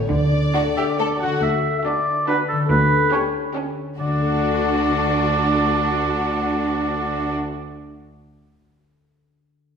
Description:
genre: cinematic, playful, whimsical film cue.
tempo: 140 BPM.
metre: 3/4.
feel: straight.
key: D major.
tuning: A4 = 441 Hz.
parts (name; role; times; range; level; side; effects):
concert harp; arpeggios; 0.0-8.2 s; A2 to F#5; -24 LUFS; left 4 dB; none.
rich chamber violin section; melody; 0.1-7.3 s; A4 to D5; -32 LUFS; left 3 dB; none.
clear chamber cello section; bass; 0.1-7.3 s; D2 to D3; -24 LUFS; right 2 dB; none.
rich studio violin section; second line; 0.5-7.3 s; F#4 to A4; -28 LUFS; left 2 dB; none.
clear studio viola section; accompaniment; 0.6-7.3 s; A3 to D4; -27 LUFS; right 2 dB; none.
warm oboe; second line; 0.8-7.3 s; A4 to F#5; -22 LUFS; right 2 dB; none.
room: wet recital hall reverb, RT60 1.5 s.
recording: recorded in a church or concert hall.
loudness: -18 LUFS.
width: side -6 dB against mid.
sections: 0.0-1.4 A section; 1.4-4.0 B section; 4.0-6.6 C section.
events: none.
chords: 0.1 D; 2.7 A7/D; 4.0 D.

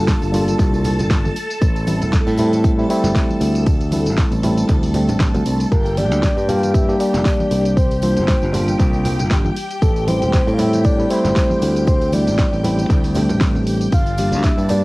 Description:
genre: nu-disco, nu disco.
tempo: 117 BPM.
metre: 4/4.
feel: swing 55% on 16ths.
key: G dorian.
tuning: A4 = 439 Hz.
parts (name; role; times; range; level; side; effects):
tine electric piano; accompaniment; 0.0-14.8 s; G3 to G4; -20 LUFS; equal; cassette tape.
string machine, full ensemble; sustained chords; 0.0-14.8 s; D4 to A5; -28 LUFS; equal; phaser, ensemble chorus, sidechain pumping, cassette tape.
modern bright fingered electric bass; bass; 0.0-14.8 s; E1 to A2; -20 LUFS; equal; sidechain pumping.
electronic kick drum; drums; 0.1-14.6 s; none; -17 LUFS; equal; small room reverb, cassette tape.
pop drum kit; drums; 0.1-14.8 s; hi-hat, snare drum, tambourine; -28 LUFS; equal; small room reverb, cassette tape.
tambourine, congas and bongos; percussion; 0.1-14.8 s; none; -29 LUFS; right 1 dB; none.
soft octave-layered synth lead; melody; 5.7-14.8 s; A4 to F5; -22 LUFS; equal; chorus, cassette tape.
room: light reverb.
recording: home recording on cassette.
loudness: -14 LUFS.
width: side -21 dB against mid.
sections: 0.0-14.8 A section.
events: none.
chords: 0.0 C7sus4; 1.4 Am7; 3.7 D7sus4; 5.7 Gm; 7.8 C7sus4; 9.6 Am7; 11.9 D7sus4; 13.9 Gm.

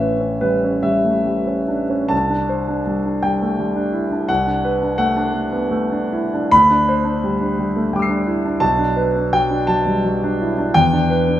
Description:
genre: classical, impressionist solo piano.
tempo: 56 BPM (dotted quarters).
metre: 6/8.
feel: uneven beats, rubato.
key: unclear.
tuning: A4 = 442 Hz.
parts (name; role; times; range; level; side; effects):
clear concert grand piano; solo; 0.0-11.4 s; A1 to C7; -16 LUFS; equal; none.
room: wet recital hall reverb, RT60 1.7 s.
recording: minimal, uncompressed stereo recording.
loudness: -16 LUFS.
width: side -12 dB against mid.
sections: 0.0-11.4 A section.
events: none.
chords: 0.0 A9; 2.1 C69; 4.3 Bm7/C; 6.5 D9sus4; 8.6 Bm7; 10.8 Em7.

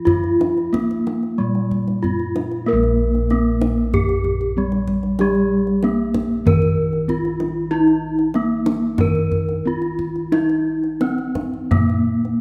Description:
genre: Javanese gamelan.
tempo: 94 BPM.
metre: 4/4.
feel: uneven beats.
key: Bb pelog barang.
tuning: A4 = 440 Hz.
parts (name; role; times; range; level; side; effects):
gamelan-type bronze metallophone; melody; 0.0-12.4 s; G3+20c to Bb4; -22 LUFS; equal; none.
gamelan-type bossed gongs; bass; 0.0-12.4 s; Bb1 to Bb4; -24 LUFS; equal; none.
kendang; percussion; 0.1-12.3 s; none; -26 LUFS; equal; none.
room: moderate scoring stage reverb, RT60 1.6 s.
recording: none.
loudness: -19 LUFS.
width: mono.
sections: 0.0-2.7 A section; 2.7-12.4 B section.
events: none.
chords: none.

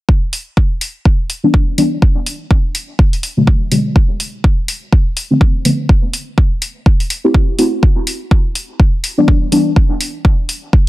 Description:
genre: deep house.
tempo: 124 BPM.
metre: 4/4.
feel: swing 59% on 16ths.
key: E minor.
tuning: A4 = 440 Hz.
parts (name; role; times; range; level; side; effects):
electronic kick drum; drums; 0.1-10.8 s; none; -11 LUFS; equal; none.
electronic hi-hat; drums; 0.3-10.6 s; none; -20 LUFS; left 1 dB; none.
deep mellow chord stab; stabs; 1.4-9.8 s; B2 to G4; -15 LUFS; left 1 dB; chorus, sidechain pumping, dub echo.
room: little or no reverb.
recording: echo-heavy mix.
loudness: -12 LUFS.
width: side -17 dB against mid.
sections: 0.1-10.9 A section.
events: filter sweep on synth stab 0.1-10.9.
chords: 0.1 Em7; 2.0 Bm7; 4.0 Dm7; 5.9 Am7; 7.8 Em7; 9.8 N.C..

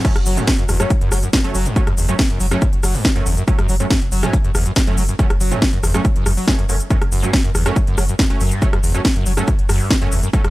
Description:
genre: driving peak-time techno.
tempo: 140 BPM.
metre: 4/4.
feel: straight.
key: F# phrygian.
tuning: A4 = 439 Hz.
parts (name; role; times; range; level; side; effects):
screaming distorted acid line; riff; 0.0-10.5 s; E2 to F#3; -23 LUFS; equal; distortion, lush chorus, sidechain pumping, tape echo.
rave stab; stabs; 0.0-10.4 s; F#3 to C#4; -26 LUFS; right 2 dB; chorus, built-in reverb, sidechain pumping, tape echo.
electronic kick drum; drums; 0.0-10.4 s; none; -17 LUFS; equal; overdrive.
techno drum kit; drums; 0.0-10.5 s; crash cymbal, hi-hat, rim click, shaker, snare drum; -21 LUFS; equal; overdrive.
saturated sub bass; bass; 0.2-10.5 s; F#1; -21 LUFS; equal; tube saturation, sidechain pumping, low-pass filter.
room: little or no reverb.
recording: dry, gritty hardware recording.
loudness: -14 LUFS.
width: side -18 dB against mid.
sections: 0.0-10.5 A section.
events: drop 0.0-10.5.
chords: 0.0 F#m.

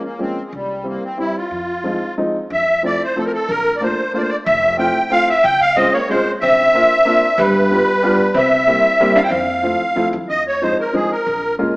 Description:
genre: musette waltz.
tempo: 185 BPM.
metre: 3/4.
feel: straight.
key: F major.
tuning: A4 = 440 Hz.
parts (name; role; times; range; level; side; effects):
musette accordion; melody; 0.0-11.6 s; G3 to G5; -15 LUFS; equal; none.
warm upright piano; accompaniment; 0.0-11.8 s; E3 to F4; -21 LUFS; equal; none.
upright bass; bass; 0.5-11.7 s; F1 to G2; -32 LUFS; equal; none.
vintage hollow-body jazz guitar; second line; 5.8-10.1 s; G3 to E4; -20 LUFS; equal; none.
room: wet stone room reverb, RT60 1.5 s.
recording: band playing live in one room, small speaker sound.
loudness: -14 LUFS.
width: side -24 dB against mid.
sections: 0.0-2.5 A section; 2.5-10.3 B section; 10.3-11.8 C section.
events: none.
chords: 0.0 Bbm7; 0.5 C; 1.5 Fm7; 2.5 Fmaj7; 3.5 Bbmaj7; 4.5 Fmaj7; 5.4 Dbmaj7; 6.4 Bbadd9; 7.4 G7; 8.4 C7; 9.3 Fmaj7; 10.3 Fm7; 11.3 Bbm7.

